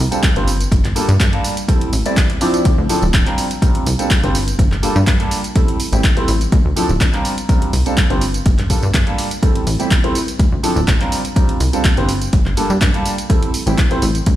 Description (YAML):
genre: filtered disco house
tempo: 124 BPM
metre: 4/4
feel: straight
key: unclear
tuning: A4 = 440 Hz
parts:
  - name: plucky analog bass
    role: bass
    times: 0.0-14.4 s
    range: D1 to G2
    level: -18 LUFS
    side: equal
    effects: sidechain pumping
  - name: clear baby grand piano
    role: accompaniment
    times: 0.1-14.0 s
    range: F3 to D5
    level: -20 LUFS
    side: right 1 dB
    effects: phaser, sidechain pumping
  - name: punchy analog drum machine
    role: drums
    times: 0.1-14.4 s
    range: handclaps, hi-hat, tambourine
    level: -22 LUFS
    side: right 1 dB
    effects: none
  - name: electronic kick drum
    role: drums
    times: 0.2-14.4 s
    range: none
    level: -15 LUFS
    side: equal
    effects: none
room: light reverb, digital ambience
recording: played on a big sound system in a bare room, stone room reverb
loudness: -13 LUFS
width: side -13 dB against mid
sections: 0.0-14.4 A section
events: none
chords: 0.5 Gm9; 1.7 Am7; 2.7 Dm9; 3.4 C9sus4; 4.3 Gm9; 5.6 Am7; 6.5 Dm9; 7.2 C9sus4; 8.2 Gm9; 9.4 Am7; 10.4 Dm9; 11.1 C9sus4; 12.1 Gm9; 13.3 Am7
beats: 0.23 | 0.72 1.20 1.69 2.17 | 2.65 3.14 3.62 4.10 | 4.59 5.07 5.56 6.04 | 6.52 7.01 7.49 7.97 | 8.46 8.94 9.43 9.91 | 10.39 10.88 11.36 11.85 | 12.33 12.81 13.30 13.78 | 14.27